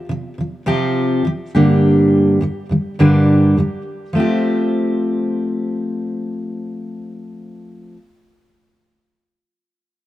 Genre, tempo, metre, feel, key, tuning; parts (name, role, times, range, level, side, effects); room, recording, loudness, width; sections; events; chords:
pop; 104 BPM; 4/4; swing 55% on 16ths; F major; A4 = 442 Hz
fingerpicked steel-string acoustic guitar; accompaniment; 0.0-8.0 s; G2 to G4; -15 LUFS; equal
moderate spring reverb, RT60 2.4 s; dark, warm production; -14 LUFS; side -14 dB against mid
0.0-4.2 A section; 4.2-6.5 B section
0.0 Csus4; 1.5 Gm; 4.2 Fadd9